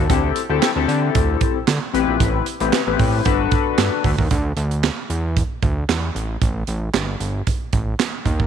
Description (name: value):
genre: early-eighties boogie funk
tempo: 114 BPM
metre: 4/4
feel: straight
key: unclear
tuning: A4 = 440 Hz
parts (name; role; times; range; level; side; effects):
- chorused polysynth; accompaniment; 0.0-4.1 s; B3 to B4; -20 LUFS; left 12 dB; none
- fat analog bass; bass; 0.0-8.5 s; G1 to D3; -21 LUFS; right 1 dB; none
- modern studio drum kit; drums; 0.1-8.5 s; handclaps, hi-hat, kick drum, snare drum; -20 LUFS; right 4 dB; none
room: light reverb, small room reverb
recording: 1960s-style stereo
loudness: -17 LUFS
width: side -8 dB against mid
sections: 0.0-4.3 A section; 4.3-8.5 B section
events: none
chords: 0.1 D9sus4; 1.9 Am7; 3.3 Gmaj9; 4.3 Dsus2; 6.2 Gsus2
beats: | 0.10 0.63 1.15 1.68 | 2.21 2.73 3.26 3.78 | 4.31 4.84 5.36 5.89 | 6.42 6.94 7.47 7.99